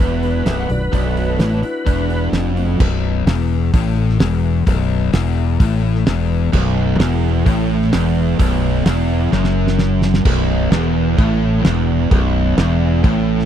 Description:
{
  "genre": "classic rock",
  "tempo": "129 BPM",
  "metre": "4/4",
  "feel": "straight",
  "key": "B minor",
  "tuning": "A4 = 440 Hz",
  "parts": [
    { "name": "overdriven tonewheel organ", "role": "melody", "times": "0.0-2.3 s", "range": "B4", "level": "-25 LUFS", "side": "right 1 dB", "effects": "chorus vibrato, slow rotary speaker" },
    { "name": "picked steel-string acoustic guitar", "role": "accompaniment", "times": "0.0-2.8 s", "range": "B2 to F#4", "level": "-30 LUFS", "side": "left 9 dB", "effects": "none" },
    { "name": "cranked stack guitar", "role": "riff", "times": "0.0-13.5 s", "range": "B1 to A2", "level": "-21 LUFS", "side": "left 12 dB", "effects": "overdrive, spring reverb" },
    { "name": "tight distorted guitar", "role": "riff", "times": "0.0-2.8, 6.5-13.5 s", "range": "B1 to A2", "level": "-21 LUFS", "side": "right 16 dB", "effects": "distortion" },
    { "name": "fingered electric bass", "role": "bass", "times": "0.0-13.5 s", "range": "B0 to A1", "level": "-18 LUFS", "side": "equal", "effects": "none" },
    { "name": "damped 70s drum kit", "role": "drums", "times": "0.0-13.4 s", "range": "crash cymbal, hi-hat, kick drum, snare drum", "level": "-17 LUFS", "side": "right 1 dB", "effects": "none" },
    { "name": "electric slide guitar", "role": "second line", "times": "0.5-2.7 s", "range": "D4 to F#5", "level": "-28 LUFS", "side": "left 3 dB", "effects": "none" }
  ],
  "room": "little or no reverb",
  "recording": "dry, close 1970s-style studio recording",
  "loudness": "-14 LUFS",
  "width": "side -10 dB against mid",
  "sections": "0.0-2.8 A section; 2.8-10.3 B section; 10.3-13.5 B section",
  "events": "drum fill 9.3-10.3",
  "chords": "0.0 Bm; 2.8 B5",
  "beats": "0.46 | 0.93 1.40 1.86 2.33 | 2.80 3.27 3.73 4.20 | 4.67 5.13 5.60 6.07 | 6.53 7.00 7.46 7.93 | 8.39 8.86 9.32 9.79 | 10.25 10.72 11.18 11.65 | 12.11 12.58 13.04"
}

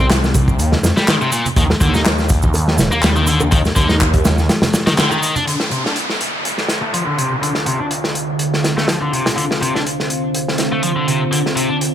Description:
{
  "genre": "breakbeat, breaks",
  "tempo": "123 BPM",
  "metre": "4/4",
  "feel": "swing 54% on 16ths",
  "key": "D phrygian",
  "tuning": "A4 = 440 Hz",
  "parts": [
    { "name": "tight distorted guitar", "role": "riff", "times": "0.0-11.7 s", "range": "Bb2 to Eb4", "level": "-20 LUFS", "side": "left 2 dB", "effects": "distortion, tube saturation, low-pass filter, tape echo" },
    { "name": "phased detuned saw bass", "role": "bass", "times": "0.0-4.5 s", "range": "Eb1 to F2", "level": "-16 LUFS", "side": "equal", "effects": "phaser" },
    { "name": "crunchy breakbeat drum kit", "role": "drums", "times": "0.0-11.9 s", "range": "hi-hat, kick drum, snare drum", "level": "-17 LUFS", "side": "equal", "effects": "high-pass filter on kick, high-pass filter on hats, high-pass filter on snare, high-pass filter on room" },
    { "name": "electronic shaker and handclaps", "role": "drums", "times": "0.0-5.4 s", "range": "none", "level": "-23 LUFS", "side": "right 1 dB", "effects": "none" },
    { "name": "congas and bongos", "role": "percussion", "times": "0.3-5.4 s", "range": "none", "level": "-25 LUFS", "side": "right 3 dB", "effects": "none" },
    { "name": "deep dark ambient pad", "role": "sustained chords", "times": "7.2-11.9 s", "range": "D3 to F5", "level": "-21 LUFS", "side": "right 1 dB", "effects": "chorus, built-in reverb, sidechain pumping" },
    { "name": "downlifter", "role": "sound effects", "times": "5.5-9.4 s", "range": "none", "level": "-24 LUFS", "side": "equal", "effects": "none" }
  ],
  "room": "light reverb, small room ambience",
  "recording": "none",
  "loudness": "-14 LUFS",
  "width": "side -10 dB against mid",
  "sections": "0.0-5.5 A section; 5.5-11.9 B section",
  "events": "band accent 5.0; filter sweep on distorted electric guitar 5.5-11.9",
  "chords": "0.0 Cm; 1.6 Ebmaj7(no3); 5.5 Dm7",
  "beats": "0.10 0.59 1.08 | 1.57 2.06 2.54 3.03 | 3.52 4.01 4.49 4.98 | 5.47 5.96 6.45 6.93 | 7.42 7.91 8.40 8.88 | 9.37 9.86 10.35 10.84 | 11.32 11.81"
}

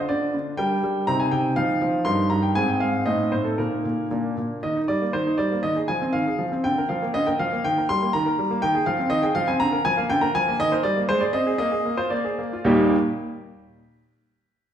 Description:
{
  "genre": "classical-period piano sonatina",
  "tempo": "120 BPM",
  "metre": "2/4",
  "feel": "rubato",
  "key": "Eb major",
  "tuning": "A4 = 440 Hz",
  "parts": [
    { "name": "clear baby grand piano", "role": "solo", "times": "0.0-12.9 s", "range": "Eb2 to C6", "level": "-20 LUFS", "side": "equal", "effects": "none" }
  ],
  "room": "wet recital hall reverb, RT60 1.4 s",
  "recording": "heard from further back in the room",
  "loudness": "-20 LUFS",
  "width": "side -9 dB against mid",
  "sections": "0.0-4.6 A section; 4.6-12.7 B section; 12.7-13.7 C section",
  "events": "none",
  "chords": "0.0 Dm7; 0.6 Gm; 1.1 Cm; 1.6 F5; 2.1 Eb/G; 2.6 Fm/Ab; 3.1 Adim; 3.6 Eb5/Bb; 4.1 Bb; 4.6 Eb; 5.6 Fm7/Eb; 6.6 Bb/D; 7.6 Eb; 8.6 Fm7/Eb; 9.6 Bb/D; 10.6 Eb; 11.1 Ab; 11.6 Bb7sus4; 12.7 Eb",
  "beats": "0.10 | 0.59 1.08 | 1.57 2.06 | 2.56 3.07 | 3.59 4.12 | 4.64 5.14 | 5.64 6.14 | 6.64 7.15 | 7.65 8.14 | 8.63 9.12 | 9.61 10.10 | 10.60 11.10 | 11.60 12.11 | 12.65"
}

